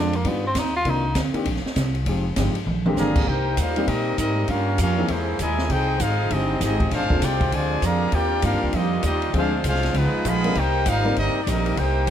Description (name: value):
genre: jazz, big band swing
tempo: 198 BPM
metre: 4/4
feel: swing 62% on 8ths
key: C minor from 3.3 s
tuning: A4 = 445 Hz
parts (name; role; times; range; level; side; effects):
- warm tenor saxophone; melody; 0.0-1.2 s; Bb3 to F4; -25 LUFS; equal; none
- warm grand piano; accompaniment; 0.0-5.1, 7.1-11.2 s; D3 to Bb4; -27 LUFS; left 2 dB; none
- upright bass; bass; 0.0-12.1 s; F1 to Bb2; -24 LUFS; right 1 dB; none
- open jazz drum kit; drums; 0.1-12.1 s; crash cymbal, hi-hat, kick drum, ride cymbal, snare drum, toms; -28 LUFS; equal; none
- warm trumpet section; melody; 3.0-12.1 s; Ab3 to Cb6; -24 LUFS; left 2 dB; none
- brilliant trombone section; second line; 3.0-12.1 s; Bb2 to Ab4; -29 LUFS; right 3 dB; none
- edgy saxophone section; sustained chords; 3.3-12.1 s; C3 to F4; -34 LUFS; left 1 dB; none
room: light reverb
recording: none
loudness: -20 LUFS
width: side -9 dB against mid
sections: 0.0-3.3 A section; 3.3-12.1 B section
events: tenor saxophone solo 0.0-3.3; drum fill 2.7-3.0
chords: 0.3 G7b13; 0.9 Cm11; 2.1 Fm9; 2.7 Bb13; 3.3 Cm7; 4.5 Gm7b5; 5.1 C7alt; 5.7 Fm9; 6.9 Bb9; 8.1 Ebmaj9; 9.3 Dm7b5; 9.9 Db9; 10.6 Cm7